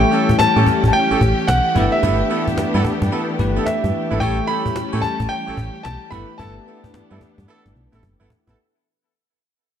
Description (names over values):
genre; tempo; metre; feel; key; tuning
R&B, new jack swing; 110 BPM; 4/4; swing 63% on 16ths; unclear; A4 = 440 Hz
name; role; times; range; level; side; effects
warm concert grand piano; melody; 0.0-8.0 s; E5 to B5; -21 LUFS; right 1 dB; none
bell-like tine electric piano; accompaniment; 0.0-8.6 s; A3 to C#5; -24 LUFS; left 6 dB; analog chorus
warm studio string section; sustained chords; 0.0-8.6 s; E3 to G4; -24 LUFS; right 1 dB; none
solid FM bass; bass; 0.0-8.5 s; F#1 to A2; -20 LUFS; equal; none
mellow horn section; stabs; 0.1-8.6 s; B3 to A4; -26 LUFS; right 2 dB; none
cajon; drums; 0.1-8.6 s; none; -24 LUFS; equal; none
room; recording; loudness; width
moderate plate reverb, RT60 1.4 s, studio reverb; dark, warm production; -16 LUFS; side -9 dB against mid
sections
0.0-8.6 A section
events
fade-out 0.0-8.6; drum fill 7.5-8.6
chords
0.0 A7; 1.8 G69; 4.2 A7; 6.1 G69